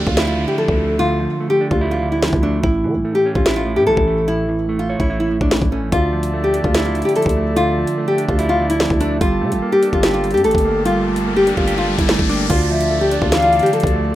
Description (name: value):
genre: hip hop, drill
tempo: 146 BPM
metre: 4/4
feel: half-time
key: D harmonic minor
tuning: A4 = 440 Hz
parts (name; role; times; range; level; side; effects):
- nylon-string guitar; melody; 0.0-14.1 s; C#4 to A4; -18 LUFS; left 1 dB; digital delay
- mellow electric guitar; accompaniment; 0.0-14.2 s; A2 to C#5; -22 LUFS; right 2 dB; vibrato effect
- growling 808-style bass; bass; 0.0-14.2 s; G1 to E3; -22 LUFS; equal; none
- downlifter and riser; sound effects; 0.0-2.6, 9.9-14.2 s; none; -28 LUFS; equal; none
- drill drum kit; drums; 0.1-13.9 s; hi-hat, kick drum, snare drum; -20 LUFS; equal; none
- pedal harmonium; sustained chords; 5.9-14.2 s; G4 to A5; -27 LUFS; left 1 dB; stereo widening
- mellow silver concert flute; second line; 12.7-13.7 s; D5 to F5; -18 LUFS; left 3 dB; digital delay
room: little or no reverb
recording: rough home demo mix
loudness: -14 LUFS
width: side -14 dB against mid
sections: 0.0-12.5 A section; 12.5-14.2 B section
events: break 0.0-5.9; riser 9.9-12.5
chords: 0.0 Dmadd9; 2.6 A; 5.9 Dmadd9; 9.2 Gmadd9; 12.5 Dmadd9